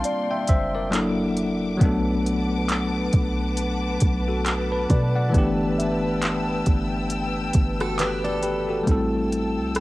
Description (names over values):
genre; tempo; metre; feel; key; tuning
contemporary R&B; 68 BPM; 4/4; swing 58% on 16ths; unclear; A4 = 440 Hz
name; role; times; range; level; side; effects
bell-like tine electric piano; accompaniment; 0.0-9.8 s; E3 to A5; -24 LUFS; left 1 dB; fast stereo tremolo, cassette tape
warm studio string section; sustained chords; 0.0-9.8 s; Bb3 to E6; -31 LUFS; equal; sidechain pumping, cassette tape
warm 808-style bass; bass; 0.0-9.8 s; F#1 to B2; -28 LUFS; equal; none
smooth R&B drum kit; drums; 0.0-9.8 s; handclaps, hi-hat, kick drum, rim click; -22 LUFS; equal; none
soft synth bell; texture; 0.0-9.3 s; B4 to E5; -34 LUFS; equal; chorus, phaser, cassette tape, tape echo
picked steel-string acoustic guitar; arpeggios; 7.8-8.8 s; D4 to B4; -33 LUFS; right 6 dB; cassette tape, tape echo
room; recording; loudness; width
little or no reverb; home recording on cassette; -20 LUFS; side -18 dB against mid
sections
0.0-8.9 A section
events
none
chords
0.0 Bb69; 0.9 F#7alt; 1.8 Bm7; 5.3 G69; 8.9 Am7